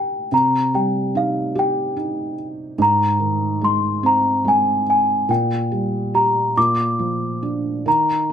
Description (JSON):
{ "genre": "children's music, lullaby", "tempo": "48 BPM (dotted quarters)", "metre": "6/8", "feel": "rubato", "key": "unclear", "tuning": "A4 = 440 Hz", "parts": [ { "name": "celesta", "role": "melody", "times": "0.0-8.3 s", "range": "F5 to D6", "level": "-18 LUFS", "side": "left 1 dB", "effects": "plate reverb" }, { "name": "felt-muted upright piano", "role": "accompaniment", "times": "0.0-8.3 s", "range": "Ab2 to Bb4", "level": "-22 LUFS", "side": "right 1 dB", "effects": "none" } ], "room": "moderate small room reverb, RT60 0.6 s", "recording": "none", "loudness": "-16 LUFS", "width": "side -8 dB against mid", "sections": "0.0-8.3 A section", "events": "none", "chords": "0.3 Cm; 2.8 Ab; 5.3 Gm/Bb; 6.6 Bb", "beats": "| 0.32 1.56 | 2.79 4.04 | 5.29 6.57 | 7.87" }